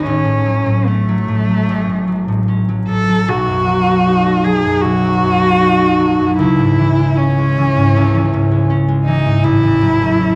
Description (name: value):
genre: classical, romantic duo for cello and harp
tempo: 77 BPM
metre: 4/4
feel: uneven beats, rubato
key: unclear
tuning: A4 = 438 Hz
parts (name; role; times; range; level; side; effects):
- rich cello; melody; 0.0-10.4 s; A3 to A4; -19 LUFS; equal; none
- concert harp; accompaniment; 0.0-10.4 s; A1 to D#4; -16 LUFS; equal; none
room: wet recital hall reverb, RT60 1.6 s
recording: vinyl crackle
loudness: -14 LUFS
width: mono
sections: 0.0-10.4 A section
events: none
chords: 0.1 F#m/A; 3.3 B7; 6.4 C#m; 9.4 F#m7/A